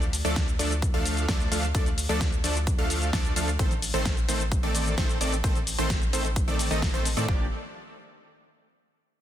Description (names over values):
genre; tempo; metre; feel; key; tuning
EDM, festival progressive house; 130 BPM; 4/4; straight; unclear; A4 = 440 Hz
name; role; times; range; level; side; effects
supersaw stab; riff; 0.0-7.5 s; Eb3 to F5; -29 LUFS; equal; sidechain pumping, tape echo
saturated sub bass; bass; 0.0-7.5 s; G1 to A2; -30 LUFS; equal; tube saturation, sidechain pumping
big-room dance drum kit; drums; 0.0-7.3 s; hi-hat, shaker, snare drum; -32 LUFS; left 1 dB; none
electronic kick drum; drums; 0.4-7.4 s; none; -27 LUFS; equal; none
room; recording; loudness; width
digital ambience; dense, heavily limited modern master; -23 LUFS; side -11 dB against mid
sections
0.0-7.3 A section; 7.3-9.1 B section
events
drop 0.0-7.3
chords
0.0 Dm; 3.6 Adim; 7.3 Gm7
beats
0.36 0.82 1.29 | 1.75 2.21 2.67 3.13 | 3.59 4.05 4.52 4.98 | 5.44 5.90 6.36 6.82 | 7.29